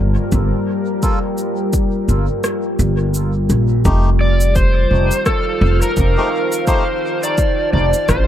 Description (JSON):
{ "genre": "ambient dub", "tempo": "85 BPM", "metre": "4/4", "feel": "swing 58% on 16ths", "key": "F mixolydian", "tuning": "A4 = 440 Hz", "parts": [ { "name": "deep dark ambient pad", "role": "sustained chords", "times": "0.0-8.3 s", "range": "G3 to A5", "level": "-21 LUFS", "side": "left 1 dB", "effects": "chorus, built-in reverb" }, { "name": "upright bass", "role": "bass", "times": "0.0-8.3 s", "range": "F1 to Bb1", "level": "-15 LUFS", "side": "equal", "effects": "none" }, { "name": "electronic cabasa and rim click", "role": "drums", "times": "0.3-8.3 s", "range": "none", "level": "-25 LUFS", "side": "equal", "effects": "dub echo" }, { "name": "electronic kick drum", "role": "drums", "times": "0.3-8.3 s", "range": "none", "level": "-18 LUFS", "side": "equal", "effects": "overdrive" }, { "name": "melodica", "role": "stabs", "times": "1.0-6.8 s", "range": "A3 to A4", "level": "-26 LUFS", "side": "left 2 dB", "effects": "dub echo" }, { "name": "backwards swelling texture", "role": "texture", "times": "4.3-8.3 s", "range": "F5", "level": "-30 LUFS", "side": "right 3 dB", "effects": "built-in reverb" }, { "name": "overdriven slide guitar", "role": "melody", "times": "4.2-8.3 s", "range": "A4 to D5", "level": "-19 LUFS", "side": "left 1 dB", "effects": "dub echo" } ], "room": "light reverb", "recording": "none", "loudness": "-14 LUFS", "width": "side -11 dB against mid", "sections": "0.0-3.9 A section; 3.9-8.3 B section", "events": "kick drops out 2.4-3.9", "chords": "0.0 Gm7; 3.9 F7" }